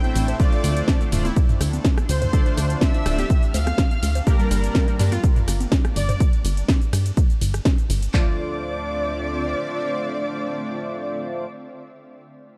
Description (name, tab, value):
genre	progressive house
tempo	124 BPM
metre	4/4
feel	straight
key	D minor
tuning	A4 = 437 Hz
part	soft supersaw	melody	0.0-11.5 s	Bb4 to G5	-33 LUFS	equal	sidechain pumping, tape echo
part	dark chamber violin section	second line	0.0-11.5 s	Bb5 to G6	-41 LUFS	equal	sidechain pumping, digital delay
part	shimmering ambient pad	sustained chords	0.2-11.5 s	D3 to E5	-38 LUFS	equal	chorus, built-in reverb, sidechain pumping
part	unison pluck	arpeggios	0.0-11.5 s	G3 to A4	-35 LUFS	equal	sidechain pumping, digital delay
part	chorused polysynth	stabs	0.0-5.1, 8.1-11.5 s	G2 to E5	-32 LUFS	equal	sidechain pumping, digital delay
part	house drum kit	drums	0.0-8.1 s	hi-hat, ride cymbal, rim click, shaker, snare drum	-30 LUFS	equal	none
part	electronic congas, bongos and toms	percussion	0.0-6.2 s	none	-31 LUFS	equal	sidechain pumping on toms, sidechain pumping on perc
part	plucky analog bass	bass	0.2-9.6 s	D1 to G2	-25 LUFS	equal	sidechain pumping
part	house drum kit	drums	0.4-8.3 s	handclaps, kick drum	-21 LUFS	equal	none
room	digital ambience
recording	dark, warm production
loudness	-21 LUFS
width	mono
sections	0.0-8.1 A section; 8.1-12.0 B section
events	drop 0.0-8.1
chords	0.4 Dm7; 4.3 Gm; 8.1 Dm7